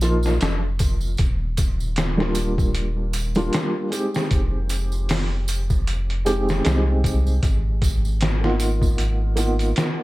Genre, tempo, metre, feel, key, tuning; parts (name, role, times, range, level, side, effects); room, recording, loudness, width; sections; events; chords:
trip hop; 77 BPM; 4/4; swing 57% on 16ths; F dorian; A4 = 443 Hz
felt-muted upright piano; accompaniment; 0.0-10.0 s; F3 to G4; -25 LUFS; equal; tremolo, tape echo
soft dub sub bass; bass; 0.0-9.7 s; Eb1 to C2; -22 LUFS; equal
trip hop sampler-style drum kit; drums; 0.0-10.0 s; hi-hat, kick drum, snare drum; -23 LUFS; equal
tambourine; percussion; 0.0-10.0 s; -36 LUFS; right 5 dB
little or no reverb; -19 LUFS; side -18 dB against mid
0.0-10.0 A section
0.0 Bbsus4; 1.2 Ebmaj7; 4.3 Fm7; 7.4 Abm6